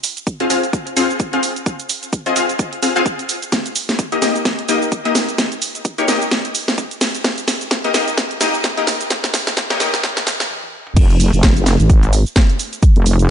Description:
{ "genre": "bass house", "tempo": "129 BPM", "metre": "4/4", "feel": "swing 58% on 16ths", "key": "F minor", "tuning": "A4 = 444 Hz", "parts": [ { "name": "house drum kit", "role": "drums", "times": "0.0-13.3 s", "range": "crash cymbal, hi-hat, shaker, snare drum, toms", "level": "-19 LUFS", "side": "right 1 dB", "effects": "none" }, { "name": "electronic kick drum", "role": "drums", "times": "0.3-12.9 s", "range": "none", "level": "-14 LUFS", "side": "equal", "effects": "high-pass filter on kick" }, { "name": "orchestra-hit-like synth stab", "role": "stabs", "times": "0.4-9.9 s", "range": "Bb3 to F5", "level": "-19 LUFS", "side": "left 3 dB", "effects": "built-in reverb, sidechain pumping, tape echo" }, { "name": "wobble bass", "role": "bass", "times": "11.0-13.3 s", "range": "F1 to Ab1", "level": "-13 LUFS", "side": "equal", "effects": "chorus, tube saturation, sidechain pumping" } ], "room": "light reverb", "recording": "high-pass filter, nothing above 10.4 kHz", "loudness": "-14 LUFS", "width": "side -9 dB against mid", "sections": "0.0-11.0 A section; 11.0-13.3 B section", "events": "build-up 0.0-11.0; drum fill 3.5-10.5, 10.5-11.0; break 10.5-11.0; drop 11.0-13.3", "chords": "0.0 Fm; 3.5 Eb; 11.0 Fm", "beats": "0.27 0.73 1.20 | 1.66 2.13 2.59 3.06 | 3.52 3.99 4.45 4.92 | 5.38 5.85 6.31 6.78 | 7.25 7.71 8.18 8.64 | 9.11 9.57 10.04 10.50 | 10.96 11.43 11.90 12.36 | 12.83 13.29" }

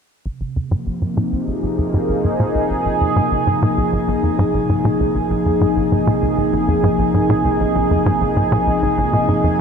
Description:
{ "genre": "ambient, sequencer-driven space music", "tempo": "98 BPM", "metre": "4/4", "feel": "straight", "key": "unclear", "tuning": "A4 = 440 Hz", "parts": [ { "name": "sweeping resonant pad", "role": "sustained chords", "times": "0.3-9.6 s", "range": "C3 to Ab4", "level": "-17 LUFS", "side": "equal", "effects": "chorus, shimmer reverb" }, { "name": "tight sequencer bass", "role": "riff", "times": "0.3-9.6 s", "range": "Bb1 to Bb2", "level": "-20 LUFS", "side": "equal", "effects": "analog delay" }, { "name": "analog drone", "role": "bass", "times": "2.5-9.6 s", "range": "Bb1", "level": "-35 LUFS", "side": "equal", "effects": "none" } ], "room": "wet huge ambient reverb, RT60 8.1 s", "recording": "none", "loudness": "-15 LUFS", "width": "side -6 dB against mid", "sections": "0.3-9.6 A section", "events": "filter sweep on analog synth bass 0.3-9.6", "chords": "0.3 Bb7(no3)", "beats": "| 0.26 0.87 1.48 2.09 | 2.70 3.32 3.93 4.54 | 5.15 5.76 6.38 6.99 | 7.60 8.21 8.83 9.44" }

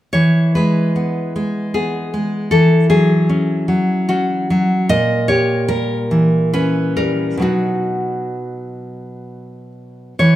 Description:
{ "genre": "romantic piece for solo classical guitar", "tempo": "64-78 BPM", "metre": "3/4", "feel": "rubato", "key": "E major", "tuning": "A4 = 440 Hz", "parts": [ { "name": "nylon-string guitar", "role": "solo", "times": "0.1-10.4 s", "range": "A#2 to D#5", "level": "-14 LUFS", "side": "equal", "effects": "none" } ], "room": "wet recital hall reverb, RT60 1.7 s", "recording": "minimal, uncompressed stereo recording", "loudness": "-14 LUFS", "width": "side -14 dB against mid", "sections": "0.1-10.4 A section", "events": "none", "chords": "0.1 E; 2.5 F#5/E; 4.9 A#dim7; 7.4 B", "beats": "| 0.14 0.96 1.74 | 2.52 3.29 4.09 | 4.89 5.70 6.54 | 7.44 8.37 9.30 | 10.21" }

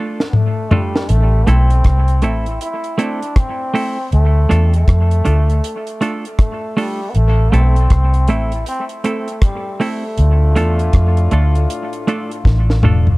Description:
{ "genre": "dub reggae", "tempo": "79 BPM", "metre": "4/4", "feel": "swing 63% on 16ths", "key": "A minor", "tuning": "A4 = 440 Hz", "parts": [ { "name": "bright trombone", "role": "melody", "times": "0.0-12.5 s", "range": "G3 to E4", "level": "-24 LUFS", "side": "equal", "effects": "dub echo" }, { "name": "semi-hollow electric guitar", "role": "accompaniment", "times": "0.0-13.1 s", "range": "A3 to A4", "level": "-22 LUFS", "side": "right 2 dB", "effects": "tremolo, dub echo" }, { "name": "deep reggae drum kit", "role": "drums", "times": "0.2-13.2 s", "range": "hi-hat, kick drum, rim click, snare drum, toms", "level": "-15 LUFS", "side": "equal", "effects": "none" }, { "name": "vintage muted fingered electric bass", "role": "bass", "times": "1.1-13.2 s", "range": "E1 to F2", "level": "-12 LUFS", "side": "equal", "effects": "none" }, { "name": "bright trombone section", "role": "second line", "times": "10.2-12.8 s", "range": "A2 to F4", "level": "-26 LUFS", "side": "left 4 dB", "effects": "dub echo" } ], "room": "studio reverb", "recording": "echo-heavy mix", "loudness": "-13 LUFS", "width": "side -21 dB against mid", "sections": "0.0-13.2 A section", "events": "break 0.0-1.1; drum fill 0.0-1.1, 12.5-13.2", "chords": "0.0 Dm; 1.1 Am; 4.1 Dm; 7.2 Am; 10.2 Dm", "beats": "0.34 | 1.09 1.85 2.61 3.36 | 4.12 4.88 5.64 6.39 | 7.15 7.91 8.66 9.42 | 10.18 10.94 11.70 12.45" }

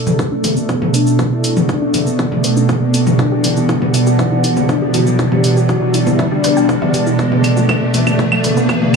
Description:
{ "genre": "melodic techno", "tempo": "120 BPM", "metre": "4/4", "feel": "straight", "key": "B minor", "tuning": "A4 = 440 Hz", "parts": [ { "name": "lush unison pad", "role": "sustained chords", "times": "0.0-9.0 s", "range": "B2 to D4", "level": "-18 LUFS", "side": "right 1 dB", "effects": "chorus, sidechain pumping" }, { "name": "bowed-like drone", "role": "drone", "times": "0.6-9.0 s", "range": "B2", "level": "-22 LUFS", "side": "right 2 dB", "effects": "built-in reverb, sidechain pumping" }, { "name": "riser", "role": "sound effects", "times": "2.3-9.0 s", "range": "none", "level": "-23 LUFS", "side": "equal", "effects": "none" }, { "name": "warbly tape-like pad", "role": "texture", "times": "0.0-9.0 s", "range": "B3 to F#5", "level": "-22 LUFS", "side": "right 2 dB", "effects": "chorus, built-in reverb, sidechain pumping" }, { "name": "wide unison pluck", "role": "arpeggios", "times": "0.1-8.9 s", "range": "F#3 to G5", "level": "-23 LUFS", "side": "left 1 dB", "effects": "sidechain pumping, tape echo" }, { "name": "punchy analog drum machine", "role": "drums", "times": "0.1-8.9 s", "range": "claves, hi-hat, shaker, toms", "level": "-18 LUFS", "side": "equal", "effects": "none" }, { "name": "electronic kick drum", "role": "drums", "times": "0.2-8.8 s", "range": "none", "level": "-22 LUFS", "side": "equal", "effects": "high-pass filter on kick, high-pass filter on room" }, { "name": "expressive synth lead", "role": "melody", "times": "0.3-8.9 s", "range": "A3 to G4", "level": "-20 LUFS", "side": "left 2 dB", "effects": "wide subtle chorus, cassette tape, sidechain pumping, dub echo" } ], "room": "moderate lush hall reverb, RT60 2.1 s", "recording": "studio ambience", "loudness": "-12 LUFS", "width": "side -5 dB against mid", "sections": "0.0-9.0 A section", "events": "build-up 0.0-9.0; drum fill 0.0-9.0; filter sweep on synth arpeggio sound 0.0-9.0; filter sweep on analog synth lead 0.0-9.0; riser 2.3-9.0", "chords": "0.0 Bm7; 3.2 Em7/B; 7.2 Bm7", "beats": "0.19 0.69 | 1.19 1.69 2.19 2.69 | 3.19 3.69 4.19 4.69 | 5.19 5.69 6.19 6.69 | 7.19 7.69 8.19 8.69" }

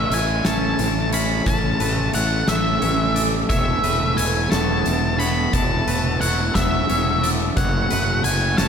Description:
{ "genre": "post-rock", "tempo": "59 BPM (dotted quarters)", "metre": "6/8", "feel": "straight", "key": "A major", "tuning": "A4 = 440 Hz", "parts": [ { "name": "octave-fuzz lead guitar", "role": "melody", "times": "0.0-8.7 s", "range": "E5 to B5", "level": "-23 LUFS", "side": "left 1 dB", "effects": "distortion, slapback echo" }, { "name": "sweeping resonant pad", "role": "sustained chords", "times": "0.0-8.7 s", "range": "C#3 to A4", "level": "-29 LUFS", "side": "right 2 dB", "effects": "lush chorus" }, { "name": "twangy electric guitar", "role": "arpeggios", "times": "0.0-8.7 s", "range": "F#2 to E4", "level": "-30 LUFS", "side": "left 3 dB", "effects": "slapback echo" }, { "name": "twangy electric guitar", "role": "arpeggios", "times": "0.0-8.7 s", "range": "B4 to D5", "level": "-34 LUFS", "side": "right 4 dB", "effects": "slapback echo" }, { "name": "fuzz fingered electric bass", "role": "bass", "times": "0.0-8.7 s", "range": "E1 to A1", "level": "-23 LUFS", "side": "equal", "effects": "overdrive" }, { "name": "oversized low-tuned drum kit", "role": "drums", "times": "0.1-8.7 s", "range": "hi-hat, kick drum, snare drum", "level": "-23 LUFS", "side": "equal", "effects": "none" } ], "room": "moderate lush hall reverb, RT60 2.7 s", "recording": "big arena sound", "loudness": "-17 LUFS", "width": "side -7 dB against mid", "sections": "0.0-8.7 A section", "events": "none", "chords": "0.0 A; 3.5 Esus4; 7.6 F#madd9", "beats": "0.45 | 1.47 2.49 | 3.50 4.52 | 5.54 6.55 | 7.57 8.59" }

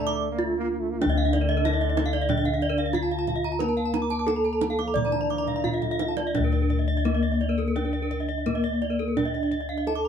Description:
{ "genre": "Balinese gamelan", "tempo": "85-95 BPM", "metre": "4/4", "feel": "straight", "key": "D pelog", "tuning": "A4 = 440 Hz", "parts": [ { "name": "gamelan-type bronze metallophone", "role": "melody", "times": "0.0-10.1 s", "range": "Bb3 to D5", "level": "-28 LUFS", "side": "equal", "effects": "none" }, { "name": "warm trombone", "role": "second line", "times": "0.0-6.2 s", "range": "D3 to Bb3", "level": "-35 LUFS", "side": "right 7 dB", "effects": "none" }, { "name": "gamelan-type bronze metallophone", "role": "accompaniment", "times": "0.0-6.3 s", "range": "D3 to D4", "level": "-33 LUFS", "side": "left 3 dB", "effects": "none" }, { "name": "gamelan-type bronze metallophone", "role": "arpeggios", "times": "0.0-10.1 s", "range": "A4 to D6", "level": "-33 LUFS", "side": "left 3 dB", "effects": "none" }, { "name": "gamelan-type bossed gongs", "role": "bass", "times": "0.0-10.1 s", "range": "D2 to Bb4", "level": "-28 LUFS", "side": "left 2 dB", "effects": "none" }, { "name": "gamelan-type bronze metallophone", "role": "arpeggios", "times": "0.1-10.0 s", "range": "Bb4 to D6", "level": "-31 LUFS", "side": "right 5 dB", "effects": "none" }, { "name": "kendang", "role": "percussion", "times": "0.1-10.0 s", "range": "none", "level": "-32 LUFS", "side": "right 4 dB", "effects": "none" } ], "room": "moderate small room reverb, RT60 0.5 s", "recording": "band playing live in one room", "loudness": "-23 LUFS", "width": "side -8 dB against mid", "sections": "0.0-6.3 A section; 6.3-10.1 B section", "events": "break 0.1-1.0; drum fill 5.5-6.3", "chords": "none", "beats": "0.38 | 1.01 1.65 2.29 2.94 | 3.60 4.27 4.95 5.64 | 6.34 7.05 7.76 8.46 | 9.17 9.87" }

